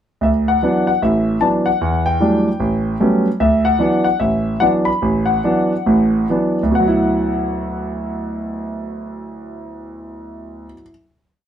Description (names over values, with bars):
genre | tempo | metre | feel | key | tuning
solo jazz | 129-152 BPM | 4/4 | swing 64% on 8ths | D major | A4 = 440 Hz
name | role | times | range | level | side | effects
warm concert grand piano | solo | 0.2-10.9 s | A1 to B5 | -15 LUFS | equal | none
room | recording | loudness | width
moderate small room reverb, RT60 0.5 s | band playing live in one room | -15 LUFS | side -9 dB against mid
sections
0.2-6.7 A section; 6.7-10.5 final chord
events
slowing down 3.4-6.7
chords
0.2 D69; 1.8 Em11; 2.6 A13; 3.4 D69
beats
| 0.21 0.61 1.01 1.40 | 1.80 2.20 2.59 2.99 | 3.38 3.78 4.18 4.59 | 5.00 5.42 5.85 6.29 | 6.75 7.21 7.68 8.14 | 8.61 9.07 9.54 10.00